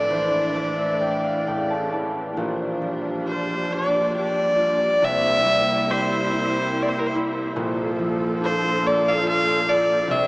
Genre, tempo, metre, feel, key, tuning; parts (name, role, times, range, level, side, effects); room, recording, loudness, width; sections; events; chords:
celtic folk, Celtic slow air; 70 BPM; 3/4; uneven beats, rubato; A4 = 436 Hz
warm fiddle; melody; 0.0-10.3 s; Bb4 to F5; -21 LUFS; equal
concert harp; accompaniment; 0.0-10.3 s; Bb1 to A5; -26 LUFS; equal
clear studio string section; sustained chords; 0.0-10.3 s; A2 to A4; -27 LUFS; equal
wet huge ambient reverb, RT60 8.8 s; in a vast, echoing space, small speaker sound; -19 LUFS; side -24 dB against mid
0.0-2.4 A section; 2.4-10.3 B section
harp fill 0.0-2.4
0.0 Asus4; 1.5 A; 2.4 Bb6; 5.0 C7; 7.6 Bbmaj7